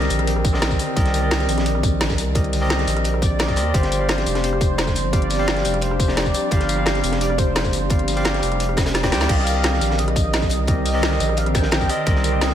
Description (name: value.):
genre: liquid drum and bass.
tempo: 173 BPM.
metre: 4/4.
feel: straight.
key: C minor.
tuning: A4 = 439 Hz.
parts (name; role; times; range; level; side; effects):
barky tine electric piano; accompaniment; 0.0-12.5 s; G3 to Bb5; -25 LUFS; equal; diffuse ambient delay.
airy breathy pad; sustained chords; 0.0-12.5 s; D3 to Bb4; -27 LUFS; equal; chorus, sidechain pumping.
saturated sub bass; bass; 0.0-12.5 s; F1 to Eb2; -22 LUFS; equal; none.
crunchy breakbeat drum kit; drums; 0.0-12.5 s; hi-hat, snare drum; -30 LUFS; equal; high-pass filter on hats, high-pass filter on snare, high-pass filter on room.
drum and bass drum kit; drums; 0.0-12.5 s; crash cymbal, hi-hat, rim click, snare drum, tambourine; -25 LUFS; equal; none.
electronic kick drum; drums; 0.4-12.1 s; none; -21 LUFS; equal; none.
warm velvety synth lead; melody; 3.2-12.5 s; C5 to G5; -27 LUFS; equal; chorus, tremolo, diffuse ambient delay.
room: light reverb, digital ambience.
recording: none.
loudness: -17 LUFS.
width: side -10 dB against mid.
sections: 0.0-9.3 A section; 9.3-12.5 A section.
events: drop 0.0-9.3, 9.3-12.5; drum fill 8.8-9.3.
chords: 0.0 Cm9; 3.7 G7sus4; 9.3 Cm9.